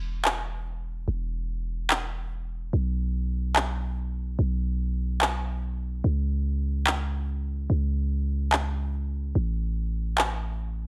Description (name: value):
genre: future bass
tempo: 145 BPM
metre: 4/4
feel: swing 56% on 16ths, half-time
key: unclear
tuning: A4 = 440 Hz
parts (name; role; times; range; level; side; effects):
- warm 808-style bass; bass; 0.0-10.9 s; E1 to C#2; -30 LUFS; equal; none
- electronic handclaps; drums; 0.2-10.3 s; none; -27 LUFS; equal; none
room: digital ambience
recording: none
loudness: -28 LUFS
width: mono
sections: 0.0-10.9 A section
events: none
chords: none